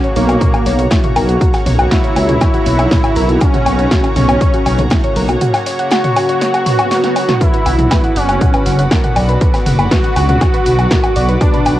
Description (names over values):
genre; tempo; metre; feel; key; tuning
melodic techno; 120 BPM; 4/4; straight; unclear; A4 = 440 Hz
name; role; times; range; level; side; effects
wide unison lead; melody; 0.0-11.8 s; A#3 to F#4; -18 LUFS; equal; sidechain pumping, cassette tape, analog delay
evolving wavetable pad; sustained chords; 0.0-11.8 s; F#4 to D6; -25 LUFS; left 1 dB; chorus, built-in reverb, sidechain pumping, cassette tape
soft round pluck; arpeggios; 0.0-11.7 s; E4 to F#6; -21 LUFS; equal; chorus, sidechain pumping, cassette tape, analog delay
brassy analog pad; stabs; 0.0-11.8 s; C#3 to F#4; -24 LUFS; left 1 dB; chorus, sidechain pumping, cassette tape, analog delay
punchy analog drum machine; drums; 0.0-11.8 s; hi-hat, snare drum, toms, woodblock; -18 LUFS; equal; cassette tape
swelling detuned saw bass; bass; 0.2-11.8 s; F#1 to C#2; -14 LUFS; equal; tube saturation, sidechain pumping
modern studio drum kit; drums; 0.2-11.8 s; hi-hat, snare drum; -33 LUFS; right 1 dB; none
electronic kick drum; drums; 0.4-11.5 s; none; -14 LUFS; equal; cassette tape
swell; sound effects; 6.7-7.4 s; none; -24 LUFS; right 3 dB; none
room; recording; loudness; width
light reverb, digital ambience; home recording on cassette; -10 LUFS; side -14 dB against mid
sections
0.0-11.8 A section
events
swell 6.7-7.4; drum fill 6.9-7.4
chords
0.0 F#/B; 7.4 Bm